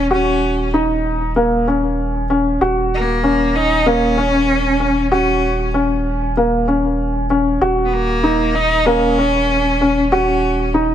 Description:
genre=piano and strings electronica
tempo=96 BPM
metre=4/4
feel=straight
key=Eb minor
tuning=A4 = 444 Hz
part: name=clear cello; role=melody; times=0.0-10.7 s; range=Bb3 to Eb4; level=-18 LUFS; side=left 1 dB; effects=ping-pong delay
part: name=felt-muted upright piano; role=riff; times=0.0-10.9 s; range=Bb3 to Gb4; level=-16 LUFS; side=left 1 dB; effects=ping-pong delay
part: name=round analog bass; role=bass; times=0.0-10.9 s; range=Eb1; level=-22 LUFS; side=right 1 dB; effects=none
room=moderate echo chamber reverb, RT60 1.7 s, small room ambience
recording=none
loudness=-14 LUFS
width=side -10 dB against mid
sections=0.0-10.9 A section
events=none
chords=0.0 Ebm7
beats=| 0.12 0.74 1.37 1.99 | 2.62 3.24 3.87 4.49 | 5.12 5.74 6.37 6.99 | 7.62 8.24 8.87 9.49 | 10.12 10.74

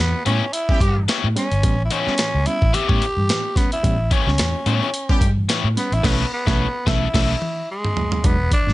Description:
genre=funk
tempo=109 BPM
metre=4/4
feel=swing 56% on 16ths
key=unclear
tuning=A4 = 442 Hz
part: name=growling tenor saxophone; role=melody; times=0.0-8.7 s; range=G#3 to G4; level=-24 LUFS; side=equal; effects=none
part: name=reed electric piano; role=stabs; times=0.0-8.7 s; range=A2 to D4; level=-27 LUFS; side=right 2 dB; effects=none
part: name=vintage muted fingered electric bass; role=bass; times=0.0-8.7 s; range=E1 to A2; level=-20 LUFS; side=equal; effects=none
part: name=biting overdriven guitar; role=accompaniment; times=0.3-7.3 s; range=B3 to E5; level=-24 LUFS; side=left 8 dB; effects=none
part: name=breakbeat sampler-style drum kit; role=drums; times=0.3-8.7 s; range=crash cymbal, hi-hat, kick drum, snare drum, toms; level=-21 LUFS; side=equal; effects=none
part: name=warm horn section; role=second line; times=0.7-1.0, 5.1-5.3 s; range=E3 to G4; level=-27 LUFS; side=equal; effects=none
room=light reverb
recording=nothing above 10.8 kHz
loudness=-17 LUFS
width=side -17 dB against mid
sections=0.0-8.2 A section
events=band accent 6.0-8.2; drum fill 7.1-8.2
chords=0.0 A9; 6.0 B9sus4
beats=0.54 1.09 | 1.64 2.19 2.74 3.29 | 3.84 4.39 4.94 5.49 | 6.04 6.59 7.14 7.69 | 8.24

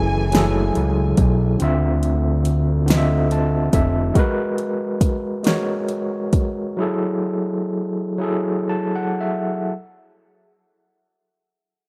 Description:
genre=slow six-eight R&B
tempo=38-47 BPM (dotted quarters)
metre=6/8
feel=straight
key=unclear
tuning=A4 = 440 Hz
part: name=overdriven tine electric piano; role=accompaniment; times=0.0-9.7 s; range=D3 to A5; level=-24 LUFS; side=equal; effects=fast tremolo
part: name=warm studio string section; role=sustained chords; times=0.0-1.6 s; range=E3 to G#5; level=-29 LUFS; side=equal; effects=none
part: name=fat analog bass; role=bass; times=0.0-4.1 s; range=F1 to D2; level=-22 LUFS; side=equal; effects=none
part: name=smooth R&B drum kit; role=drums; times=0.3-6.5 s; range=hi-hat, kick drum, snare drum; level=-22 LUFS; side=equal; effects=none
room=digital ambience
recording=rough home demo mix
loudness=-20 LUFS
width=mono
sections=0.0-9.7 A section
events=tine electric piano fill 2.9-4.2, 8.2-9.7; slowing down 4.2-9.7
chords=0.0 F#m9; 1.6 Dm9; 4.2 G#m9; 6.8 F#m9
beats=0.32 | 1.60 2.88 | 4.15 5.44 | 6.78 8.19

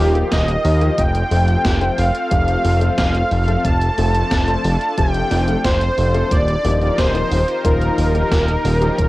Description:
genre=synthwave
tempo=90 BPM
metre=4/4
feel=straight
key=unclear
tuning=A4 = 440 Hz
part: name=soft supersaw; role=melody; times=0.0-9.1 s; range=G4 to A5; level=-20 LUFS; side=equal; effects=cassette tape, analog delay
part: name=analog string pad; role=sustained chords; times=0.0-9.1 s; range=Eb3 to Bb4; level=-28 LUFS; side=equal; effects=ensemble chorus, sidechain pumping, cassette tape, plate reverb
part: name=warm baby grand piano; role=stabs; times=0.0-8.9 s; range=F3 to C5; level=-25 LUFS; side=left 5 dB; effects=cassette tape, plate reverb
part: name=fat analog bass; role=bass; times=0.0-9.1 s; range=Eb1 to Eb2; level=-18 LUFS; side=equal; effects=tube saturation, sidechain pumping
part: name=gated 80s digital drum machine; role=drums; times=0.1-9.1 s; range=hi-hat, snare drum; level=-26 LUFS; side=equal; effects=gated reverb, gated reverb snare
part: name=electronic kick drum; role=drums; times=0.3-9.1 s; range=none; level=-20 LUFS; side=equal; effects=none
room=light reverb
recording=home recording on cassette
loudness=-14 LUFS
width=side -18 dB against mid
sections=0.0-9.1 A section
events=none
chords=0.0 Ebadd9; 1.0 F; 6.3 Ebadd9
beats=0.32 | 0.98 1.65 2.31 2.98 | 3.65 4.32 4.98 5.65 | 6.32 6.98 7.65 8.31 | 8.98

